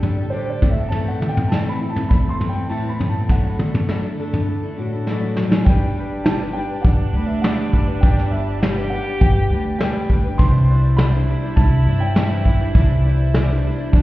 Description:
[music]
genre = indie folk with a building arrangement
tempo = 102 BPM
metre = 4/4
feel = straight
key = G major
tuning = A4 = 440 Hz
[part]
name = fingerpicked steel-string acoustic guitar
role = accompaniment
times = 0.0-5.7 s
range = E2 to A4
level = -25 LUFS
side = left 1 dB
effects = none
[part]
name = picked steel-string acoustic guitar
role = accompaniment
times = 0.0-14.0 s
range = A2 to C5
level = -27 LUFS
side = left 2 dB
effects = none
[part]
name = vintage brush drum kit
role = drums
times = 0.0-14.0 s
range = hi-hat, kick drum, snare drum, toms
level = -18 LUFS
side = equal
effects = none
[part]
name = dark upright piano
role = melody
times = 0.3-13.3 s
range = C5 to C6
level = -29 LUFS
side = right 1 dB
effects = digital delay
[part]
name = stopped French horn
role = second line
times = 5.7-14.0 s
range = D4 to G4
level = -28 LUFS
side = right 2 dB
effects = none
[part]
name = upright bass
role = bass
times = 5.7-14.0 s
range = G1 to G2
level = -18 LUFS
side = equal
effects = none
[sound]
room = light reverb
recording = heard muffled through a wall, stone room reverb, EQ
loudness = -16 LUFS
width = side -17 dB against mid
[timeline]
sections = 0.0-5.7 A section; 5.7-14.0 B section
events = drum fill 5.1-5.7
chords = 0.0 Dsus4; 0.6 Am; 3.3 Dadd9; 5.7 G; 10.4 Cadd9

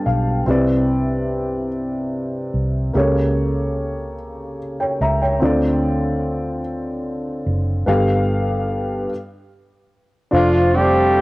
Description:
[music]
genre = slow gospel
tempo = 49 BPM (dotted quarters)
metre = 6/8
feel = straight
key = C major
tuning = A4 = 440 Hz
[part]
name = dark upright piano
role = accompaniment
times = 0.0-11.2 s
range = G2 to Bb5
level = -20 LUFS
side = left 1 dB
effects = none
[part]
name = vintage muted fingered electric bass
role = bass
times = 0.1-11.2 s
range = F1 to D2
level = -22 LUFS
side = equal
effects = none
[part]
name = mellow horn section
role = melody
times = 10.3-11.2 s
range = F3 to G4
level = -14 LUFS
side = right 1 dB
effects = cassette tape
[sound]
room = light reverb, small room ambience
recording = home recording on cassette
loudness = -17 LUFS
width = side -20 dB against mid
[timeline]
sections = 0.0-10.3 A section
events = upright piano fill 0.0-0.5; stop 9.1-10.3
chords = 0.5 Cmaj9; 2.9 A7b9/C#; 5.4 Dm7; 7.9 G9; 10.3 F6

